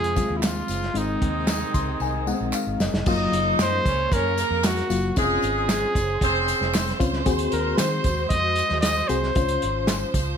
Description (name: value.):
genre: uptempo 1960s-style soul.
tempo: 114 BPM.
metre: 4/4.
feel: straight.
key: unclear.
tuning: A4 = 440 Hz.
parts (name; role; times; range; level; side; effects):
warm trumpet; melody; 0.0-10.1 s; Eb4 to Eb5; -26 LUFS; equal; slapback echo.
warm horn section; second line; 0.0-7.0 s; Ab3 to Eb5; -26 LUFS; equal; slapback echo.
rich studio string section; sustained chords; 0.0-10.4 s; C3 to C5; -32 LUFS; right 4 dB; none.
vintage muted fingered electric bass; bass; 0.0-10.3 s; F1 to Eb3; -28 LUFS; equal; none.
warm soul drum kit; drums; 0.0-10.3 s; crash cymbal, hi-hat, kick drum, snare drum; -26 LUFS; equal; none.
reed electric piano; accompaniment; 0.2-10.1 s; Gb3 to C6; -27 LUFS; left 5 dB; tremolo.
tambourine and handclaps; percussion; 0.2-10.3 s; none; -34 LUFS; left 1 dB; none.
room: moderate studio reverb, RT60 0.7 s.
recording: none.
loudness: -20 LUFS.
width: side -7 dB against mid.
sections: 0.0-3.1 A section; 3.1-10.4 B section.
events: reed electric piano fill 1.5-3.1; drum fill 2.0-3.1.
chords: 0.0 Fm; 1.0 Ab; 3.1 Gbmaj7; 5.2 Dbmaj7/F; 7.3 Ab7/Eb; 9.4 Dbmaj7.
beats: 0.43 | 0.96 1.49 2.01 2.54 | 3.06 3.59 4.12 4.64 | 5.17 5.69 6.21 6.74 | 7.26 7.79 8.31 8.83 | 9.36 9.88.